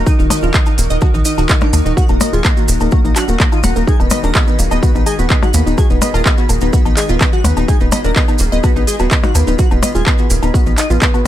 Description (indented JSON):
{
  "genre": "melodic techno",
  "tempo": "126 BPM",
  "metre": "4/4",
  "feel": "straight",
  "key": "unclear",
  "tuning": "A4 = 436 Hz",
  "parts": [
    { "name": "soft octave-layered synth lead", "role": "melody", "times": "0.0-11.2 s", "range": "Eb3 to Bb4", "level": "-22 LUFS", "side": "left 2 dB", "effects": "chorus, sidechain pumping, ping-pong delay" },
    { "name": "airy dreamy lead", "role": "second line", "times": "0.0-11.2 s", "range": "Eb4 to Bb5", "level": "-25 LUFS", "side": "right 1 dB", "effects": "chorus, phaser, sidechain pumping, digital delay" },
    { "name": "evolving wavetable pad", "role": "sustained chords", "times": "0.0-11.3 s", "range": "Eb3 to Bb4", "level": "-25 LUFS", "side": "left 3 dB", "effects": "chorus, built-in reverb, sidechain pumping" },
    { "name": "wide unison pluck", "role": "arpeggios", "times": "0.0-11.2 s", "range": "Bb3 to Gb5", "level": "-22 LUFS", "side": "right 1 dB", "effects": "sidechain pumping, digital delay" },
    { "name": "tight sequencer bass", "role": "bass", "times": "0.0-11.0 s", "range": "Eb1 to Eb2", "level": "-16 LUFS", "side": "equal", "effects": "sidechain pumping" },
    { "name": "electronic kick drum", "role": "drums", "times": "0.1-11.1 s", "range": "none", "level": "-13 LUFS", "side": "equal", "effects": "none" },
    { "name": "maracas", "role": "percussion", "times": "0.1-11.2 s", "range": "none", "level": "-26 LUFS", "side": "right 4 dB", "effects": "none" },
    { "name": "techno drum kit", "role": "drums", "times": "0.3-11.2 s", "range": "handclaps, hi-hat, percussion blips, woodblock", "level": "-19 LUFS", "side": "left 2 dB", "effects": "none" }
  ],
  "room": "digital ambience",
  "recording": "none",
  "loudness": "-11 LUFS",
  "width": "side -12 dB against mid",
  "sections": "0.0-11.3 A section",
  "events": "none",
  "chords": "0.0 Ebm; 3.9 B6/D#"
}